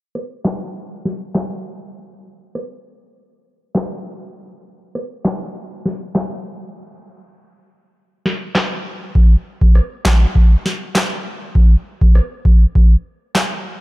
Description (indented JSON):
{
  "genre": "dancehall",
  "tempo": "100 BPM",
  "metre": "4/4",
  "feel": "straight",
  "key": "none",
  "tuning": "none",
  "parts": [
    { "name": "booming analog drum machine", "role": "drums", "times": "0.2-13.5 s", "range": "handclaps, kick drum, rim click, snare drum", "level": "-14 LUFS", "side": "equal", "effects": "none" }
  ],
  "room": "little or no reverb",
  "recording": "dark, warm production, low-pass filter",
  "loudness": "-14 LUFS",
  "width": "side -20 dB against mid",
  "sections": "0.0-9.2 A section; 9.2-13.8 B section",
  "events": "filter sweep 0.0-9.2",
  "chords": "none",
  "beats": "0.15 0.75 1.35 | 1.95 2.55 3.15 3.75 | 4.35 4.95 5.55 6.15 | 6.75 7.35 7.95 8.55 | 9.15 9.75 10.35 10.95 | 11.55 12.15 12.75 13.35"
}